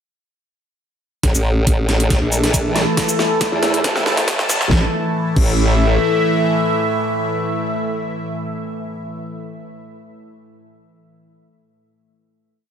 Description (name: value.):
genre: heavy wobble dubstep.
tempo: 138 BPM.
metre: 4/4.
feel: half-time.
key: unclear.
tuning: A4 = 441 Hz.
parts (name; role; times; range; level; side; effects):
evolving wavetable pad; sustained chords; 2.0-9.0 s; A2 to A5; -19 LUFS; equal; phaser, built-in reverb, sidechain pumping.
formant-sweep wobble bass; bass; 1.2-6.0 s; G1 to E2; -18 LUFS; equal; chorus, overdrive.
dubstep drum kit; drums; 1.2-5.5 s; crash cymbal, hi-hat, shaker, snare drum; -21 LUFS; equal; overdrive, high-pass filter on snare, high-pass filter on hats, high-pass filter on perc, high-pass filter on cymbals, high-pass filter on room.
electronic kick drum; drums; 1.2-5.5 s; none; -18 LUFS; equal; overdrive.
room: moderate plate reverb, RT60 1.4 s, digital ambience.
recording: dreamy mix soaked in reverb, high-pass filter.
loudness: -15 LUFS.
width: side -8 dB against mid.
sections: 1.2-4.7 build; 4.7-8.2 final chord.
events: build-up 1.2-4.7; drum fill 1.2-4.7; filter sweep on ambient pad 1.2-4.7; filter sweep 1.2-4.7.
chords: 1.2 A5.